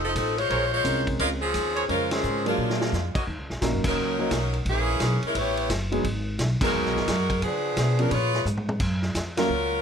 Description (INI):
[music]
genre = jazz, big band swing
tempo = 174 BPM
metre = 4/4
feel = swing 64% on 8ths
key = Bb minor, Eb minor from 3.3 s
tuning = A4 = 440 Hz
[part]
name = edgy saxophone section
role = melody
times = 0.0-9.8 s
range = Fb3 to Db5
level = -26 LUFS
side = left 1 dB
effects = none
[part]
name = upright bass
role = bass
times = 0.0-9.8 s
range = Eb1 to Db3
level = -28 LUFS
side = equal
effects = none
[part]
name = vintage drum kit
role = drums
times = 0.2-9.4 s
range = crash cymbal, hi-hat, kick drum, ride cymbal, snare drum, toms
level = -30 LUFS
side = equal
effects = none
[part]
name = mellow trumpet section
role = stabs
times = 0.5-3.2 s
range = Gb4 to Eb5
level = -32 LUFS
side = right 2 dB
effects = none
[part]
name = warm concert grand piano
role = accompaniment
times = 0.8-9.5 s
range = Db3 to C5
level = -28 LUFS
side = right 1 dB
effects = none
[sound]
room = little or no reverb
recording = none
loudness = -22 LUFS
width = side -7 dB against mid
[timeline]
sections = 0.0-3.3 A section; 3.3-9.8 B section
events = band accent 2.1, 3.8, 6.6, 9.3; drum fill 2.6-2.9, 8.5-8.8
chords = 0.0 F7; 0.5 Bbm9; 2.6 Bb7b13; 3.3 Ebm7; 4.7 Bbm7b5; 5.3 A9; 6.0 Abm7; 7.4 Db7b9; 8.8 Gbmaj7